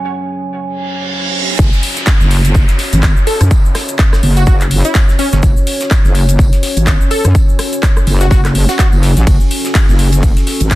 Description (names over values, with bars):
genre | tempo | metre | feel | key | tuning
bass house | 125 BPM | 4/4 | swing 58% on 16ths | F# minor | A4 = 440 Hz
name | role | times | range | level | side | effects
dark analog pad | sustained chords | 0.0-10.8 s | F#3 to G#5 | -22 LUFS | left 1 dB | lush chorus, sidechain pumping
reverse cymbal and downlifter | sound effects | 0.8-5.4 s | none | -21 LUFS | right 3 dB | none
wobble bass | bass | 1.6-10.8 s | F#1 to F#2 | -11 LUFS | equal | chorus, tube saturation, sidechain pumping
big-room dance drum kit | drums | 1.6-10.8 s | handclaps, hi-hat, ride cymbal, rim click | -20 LUFS | left 1 dB | none
damped 70s drum kit | drums | 1.6-10.8 s | hi-hat, snare drum, tambourine | -29 LUFS | right 2 dB | sidechain pumping on hats, high-pass filter on hats, low-pass filter on hats, soft clipping on snare, high-pass filter on snare, low-pass filter on snare, sidechain pumping on perc, high-pass filter on perc, low-pass filter on perc, high-pass filter on room, low-pass filter on room
electronic kick drum | drums | 1.6-10.8 s | none | -10 LUFS | equal | none
tube shaker | percussion | 1.6-10.8 s | none | -29 LUFS | left 4 dB | none
plucky unison lead | melody | 3.3-8.9 s | C#4 to A4 | -20 LUFS | equal | phaser, tape echo
room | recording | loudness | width
studio reverb | dense, heavily limited modern master | -9 LUFS | side -17 dB against mid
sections
0.0-1.6 A section; 1.6-10.8 B section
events
break 0.0-1.6; reverse cymbal 0.8-1.6; drop 1.6-10.8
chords
0.0 F#5